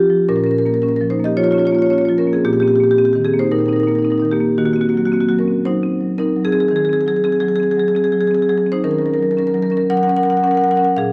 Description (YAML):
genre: classical, contemporary piece for solo marimba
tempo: 113 BPM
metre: 4/4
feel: rubato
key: unclear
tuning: A4 = 440 Hz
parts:
  - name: marimba with medium hard mallets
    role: solo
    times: 0.0-11.1 s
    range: Bb2 to Gb5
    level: -16 LUFS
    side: equal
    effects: none
room: wet recital hall reverb, RT60 1.8 s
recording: dark, warm production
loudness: -16 LUFS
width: mono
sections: 0.3-11.1 A section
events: none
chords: 0.3 Bbm; 2.4 Cm7/Bb; 4.6 Ebm6; 6.7 Ab7/Eb; 8.8 Ebm7